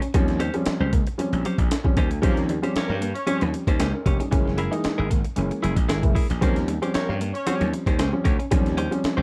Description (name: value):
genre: funk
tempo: 115 BPM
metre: 4/4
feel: straight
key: Eb mixolydian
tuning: A4 = 438 Hz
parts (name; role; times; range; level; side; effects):
- clean electric guitar; accompaniment; 0.0-9.2 s; Db4 to Db5; -32 LUFS; equal; none
- clean electric guitar; riff; 0.0-9.2 s; Gb3 to Db4; -34 LUFS; equal; none
- breakbeat sampler-style drum kit; drums; 0.0-9.2 s; hi-hat, kick drum, snare drum; -26 LUFS; equal; none
- dark upright piano; stabs; 0.1-9.2 s; Fb3 to C5; -29 LUFS; equal; none
- gritty slap bass; bass; 0.1-9.2 s; F1 to G2; -28 LUFS; equal; overdrive
- warm horn section; second line; 2.2-7.7 s; G3 to Db5; -34 LUFS; equal; none
room: light reverb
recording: dark, warm production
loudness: -23 LUFS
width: mono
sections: 0.0-9.2 A section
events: upright piano fill 9.0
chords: 0.0 Eb13; 4.3 Gb9; 6.4 Eb13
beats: | 0.14 0.67 1.19 1.71 | 2.23 2.76 3.28 3.81 | 4.33 4.85 5.38 5.90 | 6.42 6.95 7.47 7.99 | 8.52 9.04